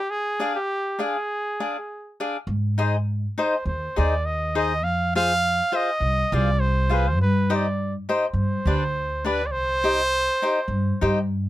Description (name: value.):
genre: mexican folk, mariachi.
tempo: 102 BPM.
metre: 4/4.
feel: swing 55% on 8ths.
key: C harmonic minor.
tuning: A4 = 440 Hz.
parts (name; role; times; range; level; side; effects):
clear trumpet; melody; 0.0-11.3 s; G4 to F5; -24 LUFS; right 1 dB; none.
cavaquinho; accompaniment; 0.4-11.2 s; D4 to F5; -24 LUFS; left 2 dB; none.
upright bass; bass; 2.5-11.5 s; C2 to Ab2; -23 LUFS; equal; none.
room: little or no reverb.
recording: close, detailed microphones.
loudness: -21 LUFS.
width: side -14 dB against mid.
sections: 0.0-11.5 A section.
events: none.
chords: 0.1 Ddim; 2.5 Ab; 4.8 Fm; 7.2 Cm/G; 8.3 G; 9.5 Cm.